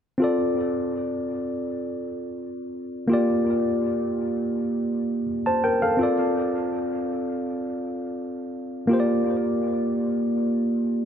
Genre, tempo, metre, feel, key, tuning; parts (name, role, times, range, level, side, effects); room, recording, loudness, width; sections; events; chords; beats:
reggae; free time; D minor; A4 = 439 Hz
tine electric piano; solo; 0.2-11.1 s; Bb3 to A5; -22 LUFS; equal; overdrive, dub echo
moderate echo chamber reverb, RT60 1.9 s, digital ambience; dark, warm production; -22 LUFS; side -8 dB against mid
0.2-11.1 A section
0.2 Dm7; 3.1 Bb6; 6.0 Dm7; 8.9 Bb6
free time